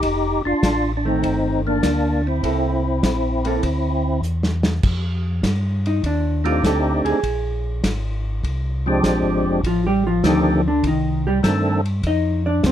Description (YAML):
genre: soul jazz organ trio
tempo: 100 BPM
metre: 4/4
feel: swing 69% on 8ths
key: F mixolydian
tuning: A4 = 440 Hz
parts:
  - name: percussive tonewheel organ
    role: melody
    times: 0.0-11.8 s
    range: Eb3 to A4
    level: -20 LUFS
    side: equal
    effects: slow rotary speaker, overdrive, chorus vibrato
  - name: mellow tonewheel organ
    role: bass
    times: 0.0-12.7 s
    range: F1 to G2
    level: -22 LUFS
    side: equal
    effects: chorus vibrato, slow rotary speaker
  - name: warm soul drum kit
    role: drums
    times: 0.0-12.7 s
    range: crash cymbal, hi-hat, kick drum, ride cymbal, snare drum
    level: -24 LUFS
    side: equal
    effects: none
  - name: hollow-body jazz guitar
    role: accompaniment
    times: 1.1-12.7 s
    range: D3 to Eb5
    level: -21 LUFS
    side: equal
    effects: none
room: light reverb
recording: dark, warm production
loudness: -18 LUFS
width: side -10 dB against mid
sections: 0.0-4.8 A section; 4.8-12.7 B section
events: drum fill 4.2-4.8; hollow-body jazz guitar solo 4.8-12.7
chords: 0.0 F13; 2.4 C13; 4.8 F13; 7.2 Bb13; 9.6 F13